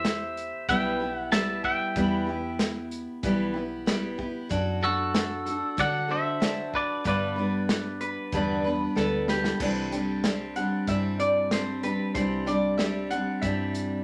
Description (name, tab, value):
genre	honky-tonk and classic country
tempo	94 BPM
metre	4/4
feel	straight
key	unclear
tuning	A4 = 439 Hz
part	twangy electric guitar	melody	0.0-8.9 s	F#4 to A5	-31 LUFS	equal	none
part	picked steel-string acoustic guitar	accompaniment	0.0-14.0 s	G2 to B4	-31 LUFS	equal	none
part	vintage muted fingered electric bass	bass	0.0-14.0 s	B1 to D3	-38 LUFS	equal	none
part	natural country drum kit	drums	0.0-13.9 s	crash cymbal, hi-hat, kick drum, snare drum	-32 LUFS	equal	none
part	lap resonator guitar	second line	8.0-14.0 s	G4 to F#5	-32 LUFS	equal	none
room	wet studio reverb, RT60 0.6 s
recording	none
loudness	-27 LUFS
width	mono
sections	0.0-9.6 A section; 9.6-14.0 B section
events	drum fill 9.0-9.6; resonator guitar played with a steel bar solo 9.6-14.0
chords	0.0 Em; 4.5 D/F#; 7.1 G; 9.6 Cadd9